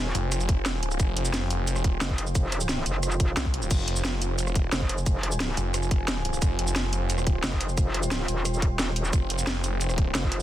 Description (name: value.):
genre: dark technical drum and bass.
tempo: 177 BPM.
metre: 4/4.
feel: straight.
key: F minor.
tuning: A4 = 445 Hz.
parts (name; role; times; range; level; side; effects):
deep dark ambient pad; sustained chords; 0.0-10.4 s; F4 to C6; -34 LUFS; equal; chorus, built-in reverb, vintage 12-bit sampler grit, sidechain pumping.
metallic wobble bass; bass; 0.0-10.4 s; Eb1 to F1; -28 LUFS; equal; chorus, tube saturation.
snarling distorted saw bass; bass; 0.1-10.1 s; F1 to C2; -28 LUFS; equal; distortion, tube saturation, sidechain pumping.
drum and bass drum kit; drums; 0.1-10.4 s; crash cymbal, hi-hat, rim click, shaker, snare drum; -30 LUFS; right 1 dB; studio reverb.
electronic kick drum; drums; 0.5-10.3 s; none; -24 LUFS; equal; studio reverb.
room: little or no reverb.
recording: dense, heavily limited modern master.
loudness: -24 LUFS.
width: side -13 dB against mid.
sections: 0.0-10.4 A section.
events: none.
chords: 0.0 Fmadd9.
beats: 0.32 0.66 | 0.99 1.33 1.67 2.01 | 2.35 2.69 3.03 3.37 | 3.71 4.05 4.38 4.72 | 5.06 5.40 5.74 6.08 | 6.42 6.76 7.10 7.44 | 7.78 8.11 8.45 8.79 | 9.13 9.47 9.81 10.15.